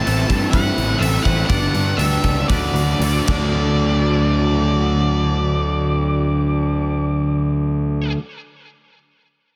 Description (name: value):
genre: rock, shoegaze and dream pop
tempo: 109-128 BPM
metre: 4/4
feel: straight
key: D major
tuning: A4 = 437 Hz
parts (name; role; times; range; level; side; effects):
- octave-fuzz lead guitar; melody; 0.0-8.1 s; D5 to A5; -28 LUFS; equal; distortion, digital delay
- twangy electric guitar; arpeggios; 0.0-4.3 s; D4 to D5; -33 LUFS; equal; ensemble chorus, digital delay
- biting overdriven guitar; riff; 0.0-8.2 s; G2 to G4; -26 LUFS; equal; subtle chorus
- overdriven electric guitar; riff; 0.0-8.2 s; G2 to E4; -26 LUFS; equal; reverse reverb
- fuzz picked electric bass; bass; 0.1-8.1 s; G1 to G2; -22 LUFS; equal; overdrive
- huge arena drum kit; drums; 0.1-3.4 s; crash cymbal, hi-hat, kick drum; -25 LUFS; equal; none
room: light reverb, studio ambience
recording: none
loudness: -18 LUFS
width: mono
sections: 0.0-3.6 A section; 3.6-7.9 B section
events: slowing down 0.0-3.6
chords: 0.0 Am7; 1.5 Gmaj7; 2.5 D